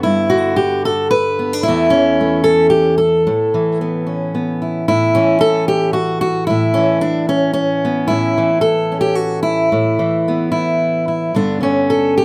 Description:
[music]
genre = folk, solo fingerstyle acoustic guitar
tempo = 112 BPM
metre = 3/4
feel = straight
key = A mixolydian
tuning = A4 = 441 Hz
[part]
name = fingerpicked steel-string acoustic guitar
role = solo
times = 0.0-12.2 s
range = E2 to B4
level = -16 LUFS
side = equal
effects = none
[sound]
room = light reverb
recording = close, detailed microphones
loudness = -16 LUFS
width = mono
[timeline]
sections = 0.0-4.9 A section; 4.9-12.2 A section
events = none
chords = 0.0 G; 1.7 Esus4; 3.3 Aadd9; 11.3 G

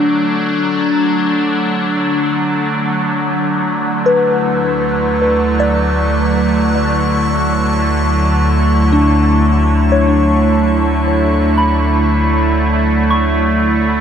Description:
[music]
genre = ambient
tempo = free time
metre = none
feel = none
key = D major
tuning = A4 = 440 Hz
[part]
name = evolving wavetable pad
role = sustained chords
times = 0.0-14.0 s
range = D3 to C#6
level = -14 LUFS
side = right 1 dB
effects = chorus, built-in reverb
[part]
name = soft synth bell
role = arpeggios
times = 0.0-14.0 s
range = D4 to C#6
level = -18 LUFS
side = left 1 dB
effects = chorus, phaser, tape echo
[part]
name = drifting glass-harmonics texture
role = texture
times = 0.0-3.2 s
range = D5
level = -38 LUFS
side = left 2 dB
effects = none
[part]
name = round analog bass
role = bass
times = 3.1-14.0 s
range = D2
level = -17 LUFS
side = equal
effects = none
[sound]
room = wet huge ambient reverb, RT60 9.3 s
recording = none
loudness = -12 LUFS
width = side -8 dB against mid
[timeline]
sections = 0.0-3.1 A section; 3.1-14.0 B section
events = none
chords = 0.0 Dmaj9

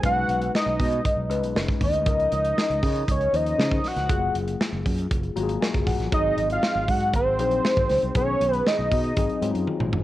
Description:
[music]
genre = polished 1980s jazz-funk pop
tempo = 118 BPM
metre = 4/4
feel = straight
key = Db major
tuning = A4 = 439 Hz
[part]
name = tine electric piano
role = accompaniment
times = 0.0-10.0 s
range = Eb3 to Bb5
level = -30 LUFS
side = left 6 dB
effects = analog chorus, cassette tape
[part]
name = fretless electric bass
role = bass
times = 0.0-10.0 s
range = Gb1 to Db3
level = -28 LUFS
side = right 1 dB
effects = none
[part]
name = modern studio drum kit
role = drums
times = 0.0-10.0 s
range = hi-hat, kick drum, snare drum, toms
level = -26 LUFS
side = right 1 dB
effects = cassette tape
[part]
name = fat analog lead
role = melody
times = 0.1-9.7 s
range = C5 to Gb5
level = -24 LUFS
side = equal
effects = chorus, phaser, cassette tape
[sound]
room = moderate spring reverb, RT60 2.0 s, small room ambience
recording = home recording on cassette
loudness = -21 LUFS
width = side -15 dB against mid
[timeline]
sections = 0.0-10.0 A section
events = tine electric piano fill 5.1-6.1; drum fill 9.7-10.0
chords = 0.0 Cb69; 2.1 Db69; 4.1 Gbmaj9; 6.1 Ab7; 8.2 Cb69; 9.2 Ab7

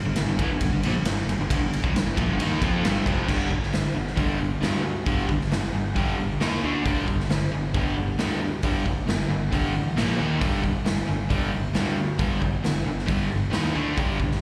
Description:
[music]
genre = hard rock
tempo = 135 BPM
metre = 4/4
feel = straight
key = G minor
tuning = A4 = 440 Hz
[part]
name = crunchy overdriven guitar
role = riff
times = 0.1-14.4 s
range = F2 to F4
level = -30 LUFS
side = equal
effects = none
[part]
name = distorted electric guitar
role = riff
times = 0.1-14.4 s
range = F2 to F4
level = -33 LUFS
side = equal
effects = distortion
[part]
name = fuzz fingered electric bass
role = bass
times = 0.1-14.3 s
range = F1 to F2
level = -32 LUFS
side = equal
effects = overdrive
[part]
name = raw garage drum kit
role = drums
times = 0.2-14.4 s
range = crash cymbal, hi-hat, kick drum, ride cymbal, snare drum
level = -29 LUFS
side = equal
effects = none
[sound]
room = light reverb, small room ambience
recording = live gig heard through the venue's PA, recital hall reverb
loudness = -25 LUFS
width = mono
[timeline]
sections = 0.0-3.3 A section; 3.3-14.4 B section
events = none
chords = 0.0 Gm; 3.3 G5; 6.4 Eb5; 6.6 D5; 6.8 G5; 10.0 Bb5; 10.2 Eb5; 10.4 G5; 13.5 Eb5; 13.8 D5

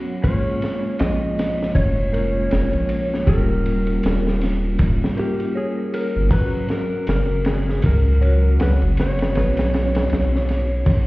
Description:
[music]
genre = trip hop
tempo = 79 BPM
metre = 4/4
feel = swing 59% on 16ths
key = Bb phrygian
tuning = A4 = 437 Hz
[part]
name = vibraphone with medium mallets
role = accompaniment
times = 0.0-11.1 s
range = F#3 to F#4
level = -25 LUFS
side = equal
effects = tremolo
[part]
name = dark detuned synth bell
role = arpeggios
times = 0.0-11.1 s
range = G4 to Bb5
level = -34 LUFS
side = left 2 dB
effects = chorus, tape echo
[part]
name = electric slide guitar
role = melody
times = 0.2-11.1 s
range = G4 to Eb5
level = -26 LUFS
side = left 1 dB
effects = vintage 12-bit sampler grit, tape echo
[part]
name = crunchy breakbeat drum kit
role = drums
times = 0.2-11.1 s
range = kick drum, ride cymbal, snare drum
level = -23 LUFS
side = equal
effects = none
[part]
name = soft dub sub bass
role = bass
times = 1.0-11.1 s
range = Eb1 to Db2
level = -20 LUFS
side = equal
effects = none
[sound]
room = small room ambience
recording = heard muffled through a wall, stone room reverb, vinyl crackle, EQ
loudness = -17 LUFS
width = side -20 dB against mid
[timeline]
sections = 0.0-11.1 A section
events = none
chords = 0.2 Bbm7; 3.3 Eb7; 6.3 Gb; 9.4 Bsus2

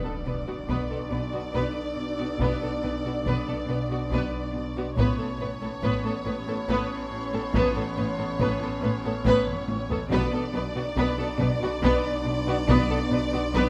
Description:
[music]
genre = cinematic, suspense film score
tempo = 70 BPM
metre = 3/4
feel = straight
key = B minor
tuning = A4 = 444 Hz
[part]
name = warm studio violin section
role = melody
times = 0.0-13.7 s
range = C#5 to D5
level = -36 LUFS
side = equal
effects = none
[part]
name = warm studio violin section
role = second line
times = 0.0-13.7 s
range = F#4 to B4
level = -34 LUFS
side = equal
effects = none
[part]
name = clear studio viola section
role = accompaniment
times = 0.0-13.7 s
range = B3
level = -34 LUFS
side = equal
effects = none
[part]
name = mellow French horn section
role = sustained chords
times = 0.0-13.7 s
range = B3 to D4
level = -36 LUFS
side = equal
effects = none
[part]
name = rich studio cello section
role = riff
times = 0.0-13.7 s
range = A2 to B3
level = -36 LUFS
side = equal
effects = none
[part]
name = warm studio cello section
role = bass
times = 0.0-13.6 s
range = A2 to B2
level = -35 LUFS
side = equal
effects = none
[part]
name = overtone-sweeping drone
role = drone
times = 0.1-13.7 s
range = A1 to B1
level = -38 LUFS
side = equal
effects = chorus, built-in reverb, phaser
[part]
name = impact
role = sound effects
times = 0.0-2.4 s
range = none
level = -42 LUFS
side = equal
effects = none
[part]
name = dark studio double bass section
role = bass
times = 0.3-13.6 s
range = A1 to B1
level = -34 LUFS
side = equal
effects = none
[part]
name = taiko ensemble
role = drums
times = 0.7-13.7 s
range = none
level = -35 LUFS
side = equal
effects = none
[part]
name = dark studio violin section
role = texture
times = 5.0-9.7 s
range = A5 to C6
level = -45 LUFS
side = equal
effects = none
[sound]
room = light reverb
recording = close, detailed microphones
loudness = -27 LUFS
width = mono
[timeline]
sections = 0.0-13.7 A section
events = impact 0.0-2.4; drum fill 9.5-10.1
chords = 0.0 Bm; 5.0 Aadd9; 10.1 Bm

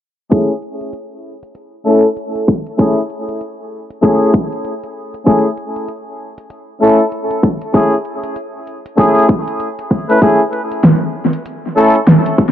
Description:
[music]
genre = glitch hop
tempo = 97 BPM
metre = 4/4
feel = swing 60% on 16ths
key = unclear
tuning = A4 = 440 Hz
[part]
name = bright horn section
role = stabs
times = 0.3-12.0 s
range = A3 to B4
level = -14 LUFS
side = left 1 dB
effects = sidechain pumping, low-pass filter, tape echo
[part]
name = electronic kick drum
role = drums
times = 0.3-12.5 s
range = none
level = -13 LUFS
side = equal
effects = high-pass filter on kick, high-pass filter on room
[part]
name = pop drum kit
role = drums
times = 0.3-12.4 s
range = hi-hat, snare drum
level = -11 LUFS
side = equal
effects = tape echo
[sound]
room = light reverb, digital ambience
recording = echo-heavy mix, low-pass filter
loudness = -12 LUFS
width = side -10 dB against mid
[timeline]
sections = 0.3-12.5 A section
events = filter sweep on horn section 0.3-12.5; filter sweep 0.3-12.5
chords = 0.3 Amaj7

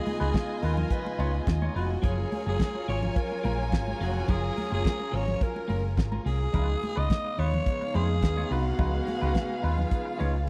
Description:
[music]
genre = disco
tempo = 106 BPM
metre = 4/4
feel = straight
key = F# major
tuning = A4 = 441 Hz
[part]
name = growling alto saxophone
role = melody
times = 0.0-10.5 s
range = E#4 to D#5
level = -36 LUFS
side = equal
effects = slapback echo
[part]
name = dark symphonic violin section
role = second line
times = 0.0-10.5 s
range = B3 to G#5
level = -38 LUFS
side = equal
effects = none
[part]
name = clean electric guitar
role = accompaniment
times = 0.0-10.4 s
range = A#3 to C#5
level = -41 LUFS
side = equal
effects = spring reverb
[part]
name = warm studio string section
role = sustained chords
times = 0.0-10.5 s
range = C#3 to E#5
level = -41 LUFS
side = equal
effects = none
[part]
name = damped 70s drum kit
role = drums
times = 0.1-10.3 s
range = hi-hat, kick drum, snare drum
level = -29 LUFS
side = equal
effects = none
[part]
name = congas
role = percussion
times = 0.1-10.3 s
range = none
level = -39 LUFS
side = equal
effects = none
[part]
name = hollow-body short-scale fingered electric bass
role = bass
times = 0.2-10.5 s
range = E#1 to E#2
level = -30 LUFS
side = equal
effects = none
[sound]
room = small room ambience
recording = dry, close 1970s-style studio recording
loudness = -28 LUFS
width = mono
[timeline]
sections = 0.0-10.5 A section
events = none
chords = 0.0 C#9; 2.0 F#maj9; 6.5 C#9

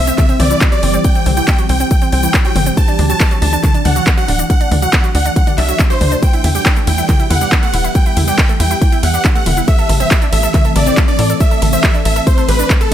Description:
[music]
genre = uplifting trance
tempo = 139 BPM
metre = 4/4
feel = straight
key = E minor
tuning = A4 = 440 Hz
[part]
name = supersaw chords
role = melody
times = 0.0-12.9 s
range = A4 to A5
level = -18 LUFS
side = equal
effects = sidechain pumping, tape echo
[part]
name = tight sequencer bass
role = bass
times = 0.0-12.9 s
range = D1 to A2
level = -15 LUFS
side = equal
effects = sidechain pumping
[part]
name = analog pluck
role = arpeggios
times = 0.1-12.9 s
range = B2 to A4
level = -23 LUFS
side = right 5 dB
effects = chorus, sidechain pumping, tape echo
[part]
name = house drum kit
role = drums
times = 0.1-12.9 s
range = handclaps, hi-hat, ride cymbal, shaker, toms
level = -19 LUFS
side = left 1 dB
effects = sidechain pumping on hats, studio ambience, sidechain pumping on perc, sidechain pumping on toms, sidechain pumping on cymbals
[part]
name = electronic kick drum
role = drums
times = 0.2-12.8 s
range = none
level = -13 LUFS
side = equal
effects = studio ambience
[sound]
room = digital ambience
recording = none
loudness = -10 LUFS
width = side -11 dB against mid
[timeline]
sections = 0.0-12.9 A section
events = none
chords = 0.0 C; 2.8 Dadd9; 6.2 Em; 9.7 Am

